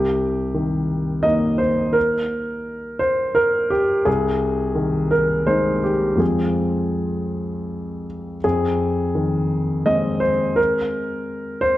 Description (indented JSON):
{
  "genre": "neoclassical minimalist piano",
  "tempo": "85 BPM",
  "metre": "3/4",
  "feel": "rubato",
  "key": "F minor",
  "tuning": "A4 = 441 Hz",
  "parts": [
    { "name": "warm grand piano", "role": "solo", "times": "0.0-11.8 s", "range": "C2 to Eb5", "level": "-18 LUFS", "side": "equal", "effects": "none" }
  ],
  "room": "moderate scoring stage reverb, RT60 1.4 s",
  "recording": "worn, warbling old tape, cassette tape, warbly pitch drift",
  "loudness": "-18 LUFS",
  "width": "side -15 dB against mid",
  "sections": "0.0-8.4 A section; 8.4-11.8 A section",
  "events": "none",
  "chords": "0.0 Cm7; 4.1 Ab/C; 6.2 Fm; 8.4 Fm7",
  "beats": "0.54 1.25 | 1.96 2.66 3.36 | 4.07 4.76 5.47 | 6.20 6.95 7.69 | 8.44 9.15 9.86 | 10.57 11.28"
}